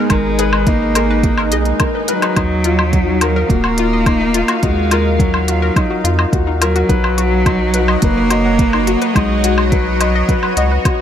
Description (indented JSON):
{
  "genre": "piano and strings electronica",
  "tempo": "106 BPM",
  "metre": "4/4",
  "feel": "straight",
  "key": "Eb minor",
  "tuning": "A4 = 437 Hz",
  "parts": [
    { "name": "dark cello", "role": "melody", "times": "0.0-10.8 s", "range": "Gb3 to Cb4", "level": "-18 LUFS", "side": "right 1 dB", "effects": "ping-pong delay" },
    { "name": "lush unison pad", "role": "sustained chords", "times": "0.0-11.0 s", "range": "F#3 to F5", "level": "-23 LUFS", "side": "equal", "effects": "chorus, phaser, sidechain pumping" },
    { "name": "analog pluck", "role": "arpeggios", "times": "0.0-10.8 s", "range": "Eb4 to F#5", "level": "-24 LUFS", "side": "left 5 dB", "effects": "chorus, sidechain pumping, ping-pong delay" },
    { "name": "warm upright piano", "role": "riff", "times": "0.0-11.0 s", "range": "Eb4 to F#5", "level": "-20 LUFS", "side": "left 3 dB", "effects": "ping-pong delay" },
    { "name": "round analog bass", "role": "bass", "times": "0.1-10.8 s", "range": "Eb1 to F2", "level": "-18 LUFS", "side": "equal", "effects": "sidechain pumping" },
    { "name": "electronic hi-hat and woodblock", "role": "drums", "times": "0.1-11.0 s", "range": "none", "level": "-20 LUFS", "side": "left 1 dB", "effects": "none" },
    { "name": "electronic kick drum", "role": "drums", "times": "0.1-11.0 s", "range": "none", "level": "-16 LUFS", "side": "equal", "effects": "none" },
    { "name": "swell", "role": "sound effects", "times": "1.5-2.4 s", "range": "none", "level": "-26 LUFS", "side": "equal", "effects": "none" }
  ],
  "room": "light reverb",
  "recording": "none",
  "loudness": "-12 LUFS",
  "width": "side -9 dB against mid",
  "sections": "0.0-11.0 A section",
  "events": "swell 1.5-2.4",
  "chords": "0.0 Abmadd9; 2.4 Ebmadd9; 6.9 B",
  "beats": "| 0.10 0.67 1.23 1.80 | 2.37 2.93 3.50 4.06 | 4.63 5.20 5.76 6.33 | 6.89 7.46 8.03 8.59 | 9.16 9.72 10.29 10.86"
}